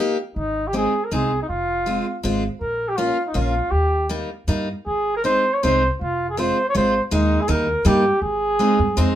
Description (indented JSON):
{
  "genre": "alpine folk, alpine dance band",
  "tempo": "160 BPM",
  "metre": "3/4",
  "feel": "swing 55% on 8ths, rubato",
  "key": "Ab major",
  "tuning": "A4 = 440 Hz",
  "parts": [
    { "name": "warm flugelhorn", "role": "melody", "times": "0.0-9.1 s", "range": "Eb4 to Db5", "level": "-20 LUFS", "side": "right 1 dB", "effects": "none" },
    { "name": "picked steel-string acoustic guitar", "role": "accompaniment", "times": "0.0-9.2 s", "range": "G3 to G4", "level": "-22 LUFS", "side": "equal", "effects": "none" },
    { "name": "upright bass", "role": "bass", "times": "0.4-9.2 s", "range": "F1 to G2", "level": "-24 LUFS", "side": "equal", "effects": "none" }
  ],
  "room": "moderate studio reverb, RT60 0.6 s",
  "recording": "minimal, uncompressed stereo recording",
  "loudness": "-18 LUFS",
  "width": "side -11 dB against mid",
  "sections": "0.4-9.2 A section",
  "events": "none",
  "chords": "0.4 Ab; 1.5 Fm; 2.6 Bbm; 3.7 Eb; 4.9 Ab; 6.0 Fm; 7.1 Ebsus4; 7.5 Eb; 8.2 Ab"
}